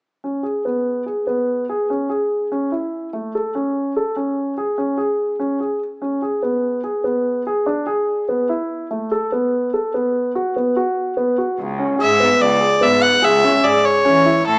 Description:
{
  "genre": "contemporary instrumental, chamber music in an uneven meter",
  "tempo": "146 BPM",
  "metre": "7/4",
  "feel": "straight",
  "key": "C# phrygian",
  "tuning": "A4 = 440 Hz",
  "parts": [
    { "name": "dark baby grand piano", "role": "arpeggios", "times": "0.2-14.6 s", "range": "A3 to A4", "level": "-18 LUFS", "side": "equal", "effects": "none" },
    { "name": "warm cello", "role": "bass", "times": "11.6-14.6 s", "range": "C#2 to E3", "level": "-23 LUFS", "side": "equal", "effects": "none" },
    { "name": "clear violin", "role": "melody", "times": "12.0-14.6 s", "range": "A4 to F#5", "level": "-14 LUFS", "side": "equal", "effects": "none" }
  ],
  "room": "moderate recital hall reverb, RT60 1.4 s",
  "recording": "small speaker sound",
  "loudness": "-16 LUFS",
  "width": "side -29 dB against mid",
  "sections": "0.0-11.6 A section; 11.6-14.6 B section",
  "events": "none",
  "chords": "0.0 C#7(no3); 2.9 Amaj7; 5.8 E (rootless); 8.7 B5; 11.6 C#m7",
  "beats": "| 0.04 0.45 0.86 1.27 1.69 2.10 2.51 | 2.92 3.33 3.75 4.16 4.57 4.98 5.40 | 5.81 6.22 6.63 7.05 7.46 7.87 8.29 | 8.70 9.11 9.52 9.94 10.35 10.76 11.17 | 11.58 12.00 12.41 12.82 13.23 13.64 14.05 | 14.46"
}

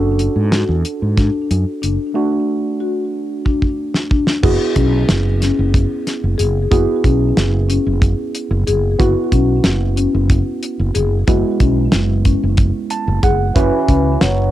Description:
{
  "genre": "progressive instrumental, band music in an uneven meter",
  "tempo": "184 BPM (eighths)",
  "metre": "7/8",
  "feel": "straight",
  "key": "F# minor",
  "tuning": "A4 = 440 Hz",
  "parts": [
    { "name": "tine electric piano", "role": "accompaniment", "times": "0.0-14.5 s", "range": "G#3 to A5", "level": "-21 LUFS", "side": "right 7 dB", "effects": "medium stereo tremolo, cassette tape" },
    { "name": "marimba with soft mallets", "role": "arpeggios", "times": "0.0-14.3 s", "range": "C#4 to G#4", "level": "-21 LUFS", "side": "left 8 dB", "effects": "cassette tape, analog delay" },
    { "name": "fretless electric bass", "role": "bass", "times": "0.0-14.5 s", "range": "F#1 to G#2", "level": "-16 LUFS", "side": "equal", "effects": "none" },
    { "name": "damped 70s drum kit", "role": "drums", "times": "0.2-14.4 s", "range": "crash cymbal, hi-hat, kick drum, snare drum", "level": "-16 LUFS", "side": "equal", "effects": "none" },
    { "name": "trombone with cup mute", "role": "second line", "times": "13.6-14.5 s", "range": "E3 to F#3", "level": "-20 LUFS", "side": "left 1 dB", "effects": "cassette tape" }
  ],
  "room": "light reverb",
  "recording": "home recording on cassette",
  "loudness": "-14 LUFS",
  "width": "side -13 dB against mid",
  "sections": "0.0-4.4 A section; 4.4-14.5 B section",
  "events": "drum fill 3.5-4.4; tine electric piano fill 12.6-13.6",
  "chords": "0.0 D/F#; 4.4 F#sus2",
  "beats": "0.19 0.52 0.84 1.17 1.50 1.82 | 2.15 2.48 2.80 3.13 3.45 3.78 4.11 | 4.43 4.76 5.08 5.41 5.73 6.06 6.39 | 6.71 7.04 7.36 7.69 8.02 8.34 8.67 | 8.99 9.32 9.65 9.97 10.30 10.62 10.95 | 11.28 11.60 11.93 12.25 12.58 12.91 13.23 | 13.56 13.88 14.21"
}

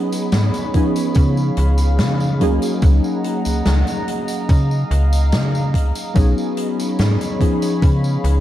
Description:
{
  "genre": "vaporwave",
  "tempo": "72 BPM",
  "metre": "4/4",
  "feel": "straight",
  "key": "F# major",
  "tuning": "A4 = 440 Hz",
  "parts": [
    { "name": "warbly lo-fi synth keys", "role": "accompaniment", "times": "0.0-8.4 s", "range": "E#3 to G#4", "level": "-21 LUFS", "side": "equal", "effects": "wide subtle chorus, analog delay" },
    { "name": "warbly tape-like pad", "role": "sustained chords", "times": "0.0-8.4 s", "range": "G#4 to B5", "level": "-28 LUFS", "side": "equal", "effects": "chorus, built-in reverb" },
    { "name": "big rock drum kit", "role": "drums", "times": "0.1-8.4 s", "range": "hi-hat, snare drum, tambourine", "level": "-26 LUFS", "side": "left 1 dB", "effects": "gated reverb" },
    { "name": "slap-like FM bass", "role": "bass", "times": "0.3-8.4 s", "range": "B1 to C#3", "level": "-16 LUFS", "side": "equal", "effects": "none" },
    { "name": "electronic kick drum", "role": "drums", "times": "0.7-8.0 s", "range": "none", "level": "-15 LUFS", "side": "equal", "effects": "overdrive" }
  ],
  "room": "light reverb, small room ambience",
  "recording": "none",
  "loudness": "-15 LUFS",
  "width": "side -13 dB against mid",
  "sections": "0.0-8.4 A section",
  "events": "none",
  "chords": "0.0 B69; 0.7 C#7; 2.4 F#69/C#; 6.2 B69; 7.4 C#7",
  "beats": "0.33 1.16 1.99 | 2.83 3.66 4.49 5.33 | 6.16 6.99 7.83"
}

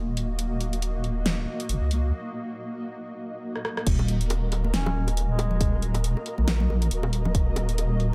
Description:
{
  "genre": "deep dubstep",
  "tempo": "138 BPM",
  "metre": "4/4",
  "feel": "swing 57% on 16ths, half-time",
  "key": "Eb minor",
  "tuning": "A4 = 438 Hz",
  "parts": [
    { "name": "granular cloud pad", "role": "sustained chords", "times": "0.0-8.1 s", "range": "Bb3 to Eb5", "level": "-37 LUFS", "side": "equal", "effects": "built-in reverb" },
    { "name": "deep soft wobble bass", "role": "bass", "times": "0.0-8.1 s", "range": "Eb1 to Db2", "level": "-27 LUFS", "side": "equal", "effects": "chorus, tube saturation" },
    { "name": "deep house drum kit", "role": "drums", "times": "0.2-8.1 s", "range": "crash cymbal, hi-hat, rim click, snare drum", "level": "-33 LUFS", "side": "equal", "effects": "none" },
    { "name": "electronic kick drum", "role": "drums", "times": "3.9-7.4 s", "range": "none", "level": "-27 LUFS", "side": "equal", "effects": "none" },
    { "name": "flickering grainy texture", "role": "texture", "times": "4.1-8.1 s", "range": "Bb4", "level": "-41 LUFS", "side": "equal", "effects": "built-in reverb" },
    { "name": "bongos and congas", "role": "percussion", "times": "4.0-7.9 s", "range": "none", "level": "-36 LUFS", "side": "equal", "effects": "dub echo" },
    { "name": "warm duduk", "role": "melody", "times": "4.7-5.9 s", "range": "Ab3 to Db4", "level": "-39 LUFS", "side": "equal", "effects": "low-pass filter, dub echo" }
  ],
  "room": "light reverb, digital ambience",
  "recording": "none",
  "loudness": "-26 LUFS",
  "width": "mono",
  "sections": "0.0-3.9 A section; 3.9-8.1 B section",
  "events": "build-up 0.0-3.9; break 2.1-3.9; drum fill 3.5-3.9; drop 3.9-8.1",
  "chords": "0.0 Ebm",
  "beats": "| 0.39 0.82 1.26 1.69 | 2.13 2.56 3.00 3.43 | 3.87 4.30 4.74 5.17 | 5.61 6.04 6.47 6.91 | 7.34 7.78"
}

